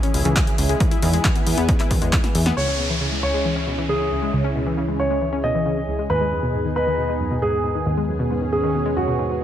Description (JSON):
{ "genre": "uplifting trance", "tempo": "136 BPM", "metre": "4/4", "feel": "straight", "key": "C# minor", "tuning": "A4 = 440 Hz", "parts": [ { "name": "lush unison pad", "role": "sustained chords", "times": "0.0-9.4 s", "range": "B3 to G#4", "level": "-27 LUFS", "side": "right 1 dB", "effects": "chorus, phaser, sidechain pumping" }, { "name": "analog pluck", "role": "arpeggios", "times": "0.0-9.4 s", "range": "C#2 to E4", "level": "-25 LUFS", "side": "left 3 dB", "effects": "chorus, sidechain pumping, dub echo" }, { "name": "punchy analog drum machine", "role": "drums", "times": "0.0-2.5 s", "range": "handclaps, hi-hat, snare drum", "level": "-26 LUFS", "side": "left 1 dB", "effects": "overdrive, sidechain pumping on hats" }, { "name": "plucky analog bass", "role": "bass", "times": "0.1-9.4 s", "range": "C#2 to E2", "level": "-25 LUFS", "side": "equal", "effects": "sidechain pumping" }, { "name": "electronic kick drum", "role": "drums", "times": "0.4-2.2 s", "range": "none", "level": "-20 LUFS", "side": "equal", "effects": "overdrive" }, { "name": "dark concert grand piano", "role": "second line", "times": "2.6-9.4 s", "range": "F#4 to D#5", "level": "-24 LUFS", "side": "right 1 dB", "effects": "dub echo" }, { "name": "downlifter", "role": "sound effects", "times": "2.6-6.1 s", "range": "none", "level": "-29 LUFS", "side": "right 1 dB", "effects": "none" } ], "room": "light reverb", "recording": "none", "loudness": "-18 LUFS", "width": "side -10 dB against mid", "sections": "0.0-2.6 A section; 2.6-9.4 B section", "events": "drum fill 2.1-2.6; filter sweep on synth pluck 2.6-9.4; filter sweep on analog synth pad 2.6-9.4", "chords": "0.0 C#m; 0.8 E; 2.6 C#m; 6.1 G#m/D#", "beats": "0.36 | 0.80 1.25 1.69 2.13 | 2.57 3.01 3.45 3.89 | 4.33 4.78 5.22 5.66 | 6.10 6.54 6.98 7.42 | 7.86 8.30 8.74 9.19" }